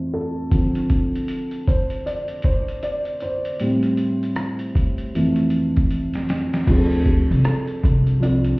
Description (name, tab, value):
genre	lo-fi hip hop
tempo	78 BPM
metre	4/4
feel	swing 62% on 16ths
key	D minor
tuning	A4 = 441 Hz
part	felt-muted upright piano	accompaniment	0.0-8.6 s	F2 to D5	-21 LUFS	equal	cassette tape, low-pass filter
part	dusty soul sampler-style drum kit	drums	0.5-8.6 s	crash cymbal, hi-hat, kick drum, rim click, snare drum	-21 LUFS	equal	vintage 12-bit sampler grit
part	upright bass	bass	6.7-8.5 s	C2 to D2	-18 LUFS	equal	none
part	buzzing kalimba	melody	7.0-8.6 s	G4 to D5	-32 LUFS	right 1 dB	none
room	light reverb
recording	heard muffled through a wall, stone room reverb, vinyl crackle, EQ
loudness	-18 LUFS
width	side -24 dB against mid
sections	0.0-6.7 A section; 6.7-8.6 B section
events	felt piano solo 0.0-6.7; drum fill 5.9-6.7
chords	0.0 Fmaj7; 0.5 Dm7; 3.6 Am7; 5.1 Fmaj7; 6.7 Dm7